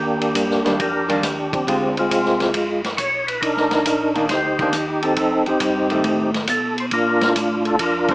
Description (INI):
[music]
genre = soul jazz organ trio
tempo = 137 BPM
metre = 4/4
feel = swing 68% on 8ths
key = unclear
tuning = A4 = 438 Hz
[part]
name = percussive tonewheel organ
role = melody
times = 0.0-8.1 s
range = Ab3 to C#5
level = -18 LUFS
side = equal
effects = slow rotary speaker, overdrive, chorus vibrato
[part]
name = mellow tonewheel organ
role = bass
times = 0.0-8.1 s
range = G1 to B2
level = -30 LUFS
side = equal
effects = chorus vibrato, slow rotary speaker
[part]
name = vintage drum kit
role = drums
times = 0.2-8.1 s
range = hi-hat, kick drum, ride cymbal, snare drum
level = -25 LUFS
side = equal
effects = none
[part]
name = archtop guitar, miked and amplified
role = accompaniment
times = 0.6-8.1 s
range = D3 to C5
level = -23 LUFS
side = equal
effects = none
[sound]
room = moderate club reverb, RT60 0.9 s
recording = small speaker sound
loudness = -17 LUFS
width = side -21 dB against mid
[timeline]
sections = 0.0-8.1 A section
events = none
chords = 0.0 Ebmaj7; 1.7 Dm7b5; 2.5 G; 3.4 Cm9; 5.2 F9; 6.9 Bbmaj7